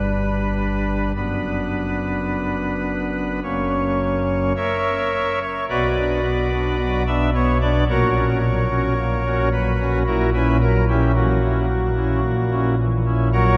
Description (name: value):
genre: classical, chorale-style piece for pipe organ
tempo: 55 BPM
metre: 4/4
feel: rubato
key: unclear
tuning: A4 = 440 Hz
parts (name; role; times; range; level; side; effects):
- pipe organ, cornet; solo; 0.0-13.6 s; F#1 to E5; -20 LUFS; equal; none
room: wet cathedral reverb, RT60 4.3 s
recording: heard from further back in the room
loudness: -20 LUFS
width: mono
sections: 0.0-5.7 A section; 5.7-13.6 B section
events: none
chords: 0.0 G; 1.2 Bm/F#; 3.4 F#; 5.7 Bm; 7.9 F#/A#; 10.1 F#7/A#